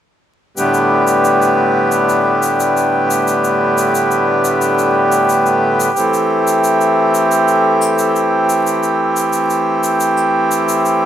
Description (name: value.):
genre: folktronica.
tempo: 89 BPM.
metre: 4/4.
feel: straight.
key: unclear.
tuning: A4 = 440 Hz.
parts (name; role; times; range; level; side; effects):
accordion; sustained chords; 0.6-11.1 s; A2 to G4; -12 LUFS; equal; none.
shaker; drums; 0.6-11.0 s; none; -26 LUFS; left 5 dB; overdrive.
room: light reverb, small room reverb.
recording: vinyl crackle.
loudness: -12 LUFS.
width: side -10 dB against mid.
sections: 0.6-11.1 A section.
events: none.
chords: 0.6 G/A; 6.0 Am7.